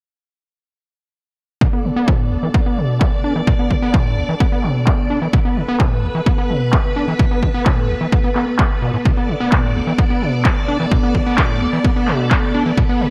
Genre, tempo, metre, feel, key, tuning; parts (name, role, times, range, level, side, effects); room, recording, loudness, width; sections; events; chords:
acid house; 129 BPM; 4/4; straight; B minor; A4 = 437 Hz
string machine, full ensemble; sustained chords; 1.6-13.1 s; B3 to D5; -25 LUFS; equal; ensemble chorus, sidechain pumping
overdriven acid bass; riff; 1.6-13.1 s; B1 to D4; -22 LUFS; equal; distortion, vintage 12-bit sampler grit, sidechain pumping, tape echo
electronic kick drum; drums; 1.6-12.9 s; -18 LUFS; equal; overdrive
electronic handclaps; drums; 2.1-12.4 s; -26 LUFS; equal; overdrive, low-pass filter on snare, low-pass filter on room
light reverb; dry, gritty hardware recording; -17 LUFS; mono
1.6-13.1 A section
filter sweep on drum 1.6-13.1; filter sweep on acid bass 1.6-13.1
1.6 Bm7